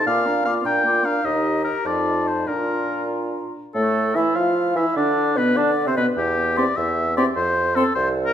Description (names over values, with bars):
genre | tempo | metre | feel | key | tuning
quick classical-period movement for wind quintet | 100 BPM (dotted quarters) | 6/8 | rubato | Bb major, F major from 3.8 s | A4 = 440 Hz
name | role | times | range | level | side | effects
mellow hollow concert flute | melody | 0.0-7.9 s | A4 to D6 | -28 LUFS | left 7 dB | none
clear oboe | second line | 0.0-8.3 s | G4 to G5 | -22 LUFS | left 2 dB | none
bright clarinet | accompaniment | 0.0-7.8 s | A3 to Bb4 | -28 LUFS | right 6 dB | none
dark French horn | accompaniment | 0.0-7.8 s | A3 to F4 | -26 LUFS | equal | none
warm bassoon | bass | 0.1-8.3 s | C2 to F3 | -25 LUFS | right 2 dB | none
room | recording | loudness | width
wet recital hall reverb, RT60 1.8 s | minimal, uncompressed stereo recording | -18 LUFS | side -9 dB against mid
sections
0.0-3.8 A section; 3.8-8.3 B section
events
none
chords
0.1 Bb; 1.2 Eb; 1.9 F7; 2.5 Bb; 3.8 F/A; 5.0 Bm; 6.2 C/E (rootless); 7.4 F5